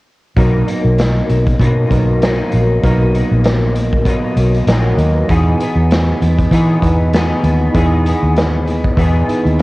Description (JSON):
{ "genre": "indie pop, bedroom pop", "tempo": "98 BPM", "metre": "4/4", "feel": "swing 55% on 16ths", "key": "B major", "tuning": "A4 = 440 Hz", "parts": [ { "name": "electric guitar through a small old amp", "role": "accompaniment", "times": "0.4-9.6 s", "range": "B2 to G#4", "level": "-19 LUFS", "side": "left 2 dB", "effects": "ensemble chorus, vibrato effect, cassette tape" }, { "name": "tine electric piano", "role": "accompaniment", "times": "0.4-9.6 s", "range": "E3 to G#5", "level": "-20 LUFS", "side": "right 3 dB", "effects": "medium stereo tremolo, cassette tape" }, { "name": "vintage muted fingered electric bass", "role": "bass", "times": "0.4-9.6 s", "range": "A#1 to E3", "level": "-14 LUFS", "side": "equal", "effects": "none" }, { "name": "raw garage drum kit", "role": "drums", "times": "0.4-9.6 s", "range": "hi-hat, kick drum, snare drum", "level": "-18 LUFS", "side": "equal", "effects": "cassette tape" } ], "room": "little or no reverb", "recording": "home recording on cassette", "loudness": "-11 LUFS", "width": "side -20 dB against mid", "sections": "0.4-9.6 A section", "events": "none", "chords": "0.4 Bmaj7; 5.3 Emaj7", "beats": "| 0.37 0.99 1.60 2.22 | 2.83 3.44 4.06 4.67 | 5.29 5.90 6.52 7.13 | 7.75 8.36 8.97 9.59" }